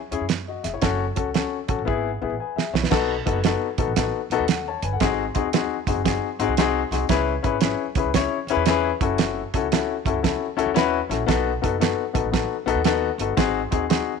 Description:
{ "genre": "uptempo 1960s-style soul", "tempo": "115 BPM", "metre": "4/4", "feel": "swing 66% on 8ths", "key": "B mixolydian", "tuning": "A4 = 440 Hz", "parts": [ { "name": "warm upright piano", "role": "accompaniment", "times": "0.1-14.1 s", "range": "B3 to A5", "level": "-23 LUFS", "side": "left 11 dB", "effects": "none" }, { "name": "upright bass", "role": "bass", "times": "0.1-14.0 s", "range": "E#1 to F#2", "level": "-30 LUFS", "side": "right 2 dB", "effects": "none" }, { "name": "cloth-damped thuddy drum kit", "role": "drums", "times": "0.1-14.1 s", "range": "crash cymbal, hi-hat, kick drum, snare drum", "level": "-23 LUFS", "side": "right 8 dB", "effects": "none" } ], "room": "light reverb, small room ambience", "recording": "1960s-style stereo with parts hard left and right", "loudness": "-20 LUFS", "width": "side -5 dB against mid", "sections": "0.0-2.9 A section; 2.9-14.2 B section", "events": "drum fill 1.9-2.9", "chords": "0.0 C#m; 0.8 F#m; 1.9 E/G#; 2.9 B7; 5.0 G#7; 7.1 C#m7; 8.9 F#m7; 11.3 B7; 13.4 G#7" }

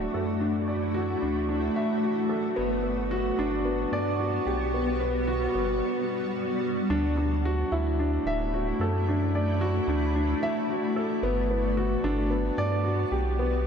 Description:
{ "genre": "piano and strings electronica", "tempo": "111 BPM", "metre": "4/4", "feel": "straight", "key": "D major", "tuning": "A4 = 440 Hz", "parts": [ { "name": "granular cloud pad", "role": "sustained chords", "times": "0.0-13.7 s", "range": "G3 to D5", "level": "-30 LUFS", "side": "equal", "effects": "built-in reverb, ensemble chorus" }, { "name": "warm grand piano", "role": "riff", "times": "0.0-13.7 s", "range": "B3 to E5", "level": "-28 LUFS", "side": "equal", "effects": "ping-pong delay" }, { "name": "warm sub bass", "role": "bass", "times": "0.0-13.7 s", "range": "D1 to G2", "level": "-29 LUFS", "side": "equal", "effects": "none" } ], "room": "wet plate reverb, RT60 3.0 s", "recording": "dreamy mix soaked in reverb", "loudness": "-24 LUFS", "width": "side -7 dB against mid", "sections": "0.0-6.9 A section; 6.9-13.7 B section", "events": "build-up 0.0-6.9; drop 6.9-13.7", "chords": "0.0 Dadd9; 2.6 Gmaj7; 6.9 Dadd9; 11.2 Gmaj7" }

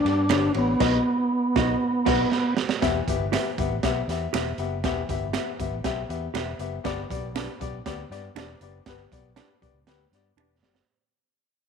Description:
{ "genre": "uptempo 1960s-style soul", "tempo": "119 BPM", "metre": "4/4", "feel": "straight", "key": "E minor", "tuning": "A4 = 438 Hz", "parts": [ { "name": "tonewheel organ", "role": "melody", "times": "0.0-2.5 s", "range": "B3 to D4", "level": "-23 LUFS", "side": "right 1 dB", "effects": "chorus vibrato, stopped rotary speaker" }, { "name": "dark upright piano", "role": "accompaniment", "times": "0.0-10.8 s", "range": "G2 to E5", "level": "-30 LUFS", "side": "left 13 dB", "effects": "none" }, { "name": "fingered electric bass", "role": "bass", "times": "0.0-10.8 s", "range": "E1 to G2", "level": "-32 LUFS", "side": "equal", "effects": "none" }, { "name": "crunchy breakbeat drum kit", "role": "drums", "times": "0.1-10.9 s", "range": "crash cymbal, hi-hat, kick drum, ride cymbal, snare drum", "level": "-29 LUFS", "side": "right 6 dB", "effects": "none" }, { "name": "mellow electric guitar", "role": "stabs", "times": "0.3-10.5 s", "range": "D4 to E5", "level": "-33 LUFS", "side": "right 13 dB", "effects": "spring reverb" }, { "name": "finger snaps", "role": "percussion", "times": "0.3-10.5 s", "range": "none", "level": "-38 LUFS", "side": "right 12 dB", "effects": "none" } ], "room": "light reverb, small room ambience", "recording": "1960s-style stereo with parts hard left and right", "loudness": "-23 LUFS", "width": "side -6 dB against mid", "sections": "0.0-2.8 A section; 2.8-10.9 B section", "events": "band accent 0.8-2.8; drum fill 2.3-2.8, 10.4-10.9; fade-out 2.8-10.9", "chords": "0.0 G; 0.8 B; 2.8 Em; 6.9 G" }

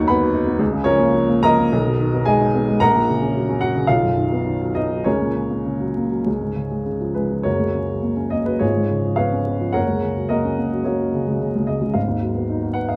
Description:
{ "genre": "classical, romantic character piece for solo piano", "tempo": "98-120 BPM", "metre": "4/4", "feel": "rubato", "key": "F# major", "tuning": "A4 = 440 Hz", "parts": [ { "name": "dark upright piano", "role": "solo", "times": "0.0-13.0 s", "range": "F#1 to C#6", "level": "-20 LUFS", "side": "equal", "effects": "none" } ], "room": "moderate large studio reverb, RT60 1.2 s", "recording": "vinyl crackle", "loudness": "-20 LUFS", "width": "mono", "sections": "0.0-7.5 A section; 7.5-13.0 B section", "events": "none", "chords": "0.0 B/D#; 0.6 A#m/C#; 1.7 G#m/B; 2.8 F#/A#; 3.9 B; 5.1 F#/C#; 6.3 C#; 7.5 F#; 8.6 C#7/G#; 9.8 F#; 12.0 G#m7" }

